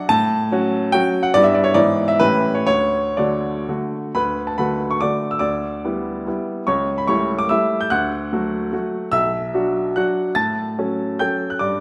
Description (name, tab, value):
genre	classical, romantic triple-time dance for piano with dotted rhythms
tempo	114-158 BPM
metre	3/4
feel	rubato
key	D major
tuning	A4 = 440 Hz
part	clear baby grand piano	solo	0.0-11.8 s	B1 to A6	-20 LUFS	equal	none
room	wet recital hall reverb, RT60 1.6 s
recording	none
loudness	-20 LUFS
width	mono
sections	0.0-4.1 A section; 4.1-11.8 B section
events	none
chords	0.1 F#m/A; 1.3 Em/G; 1.8 E7/G#; 2.2 A7; 2.7 D; 5.4 Em7/D; 6.7 A7/C#; 7.9 D; 9.1 Bm; 10.4 F#m/A